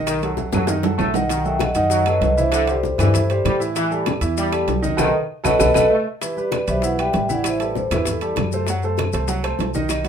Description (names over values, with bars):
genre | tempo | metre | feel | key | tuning
latin, salsa | 195 BPM | 4/4 | straight | E minor | A4 = 441 Hz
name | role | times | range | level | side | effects
clear grand piano | accompaniment | 0.0-10.1 s | D#3 to F#5 | -24 LUFS | right 3 dB | none
upright bass | bass | 0.0-10.1 s | A1 to A2 | -24 LUFS | left 1 dB | none
clear trombone section | second line | 0.1-6.1 s | D3 to A3 | -24 LUFS | equal | none
bongos | percussion | 0.1-10.1 s | none | -30 LUFS | left 6 dB | none
claves | percussion | 0.1-10.1 s | none | -34 LUFS | left 4 dB | none
congas | percussion | 0.1-10.1 s | none | -28 LUFS | left 2 dB | none
maracas | percussion | 0.1-10.1 s | none | -33 LUFS | left 8 dB | none
timbales | percussion | 0.1-10.1 s | none | -28 LUFS | right 8 dB | none
vibraphone with soft mallets | melody | 1.1-8.4 s | E4 to G5 | -20 LUFS | equal | none
room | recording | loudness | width
moderate studio ambience, RT60 0.5 s | minimal, uncompressed stereo recording | -17 LUFS | side -8 dB against mid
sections
0.0-6.2 A section; 6.2-10.1 B section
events
drum fill 0.4-1.3, 5.0-6.2; band accent 5.0-6.2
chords
0.1 B7; 2.5 C; 3.8 A5; 5.0 B7; 6.2 Em; 7.4 Am7; 8.7 F#dim